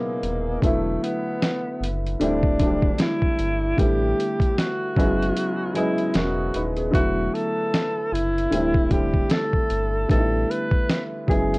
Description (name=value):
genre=lo-fi hip hop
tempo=76 BPM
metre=4/4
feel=swing 57% on 16ths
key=E dorian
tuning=A4 = 443 Hz
part: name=breathy tenor saxophone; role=melody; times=0.0-11.6 s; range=A3 to B4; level=-25 LUFS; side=equal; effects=low-pass filter, plate reverb
part: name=warm upright piano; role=accompaniment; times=0.0-11.6 s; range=B2 to D#5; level=-25 LUFS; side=equal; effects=low-pass filter, plate reverb
part: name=sub bass with octave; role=bass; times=0.2-11.6 s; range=D1 to A1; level=-27 LUFS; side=equal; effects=transformer saturation
part: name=lo-fi sampler-style drum kit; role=drums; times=0.2-11.6 s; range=hi-hat, kick drum, snare drum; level=-22 LUFS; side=equal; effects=none
room=light reverb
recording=worn, warbling old tape, cassette tape, warbly pitch drift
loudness=-20 LUFS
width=side -24 dB against mid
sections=0.0-11.6 A section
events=break 5.4-6.9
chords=0.0 F#9sus4; 0.6 E9sus4; 2.2 D9sus4; 3.8 A9sus4; 5.0 F#9sus4; 6.9 E9sus4; 8.5 D9sus4; 10.1 A9sus4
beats=| 0.62 1.41 2.20 2.99 | 3.78 4.57 5.36 6.15 | 6.94 7.73 8.52 9.31 | 10.10 10.89